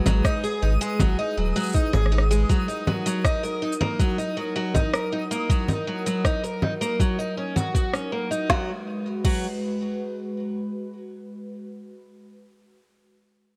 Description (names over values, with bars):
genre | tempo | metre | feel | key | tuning
folktronica | 80 BPM | 4/4 | straight | G# minor | A4 = 443 Hz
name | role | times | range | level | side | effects
warbly tape-like pad | sustained chords | 0.0-12.0 s | F#3 to B4 | -34 LUFS | equal | chorus, built-in reverb, vintage 12-bit sampler grit
picked twelve-string acoustic guitar | arpeggios | 0.0-9.5 s | F#3 to A#4 | -29 LUFS | equal | vintage 12-bit sampler grit, low-pass filter, digital delay
twinkling granular texture | texture | 0.0-8.5 s | D#6 | -40 LUFS | equal | built-in reverb
warm sub bass | bass | 0.1-2.4 s | D#1 to G#1 | -24 LUFS | equal | none
organic electronic drum kit | drums | 0.1-9.5 s | congas, crash cymbal, rim click, shaker, snare drum | -30 LUFS | equal | small room ambience
electronic kick drum | drums | 0.2-9.5 s | none | -25 LUFS | equal | small room ambience
room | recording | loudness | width
little or no reverb | none | -25 LUFS | mono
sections
0.0-8.5 A section; 8.5-11.5 B section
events
none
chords
0.0 G#m7; 2.5 F#6; 8.5 G#m7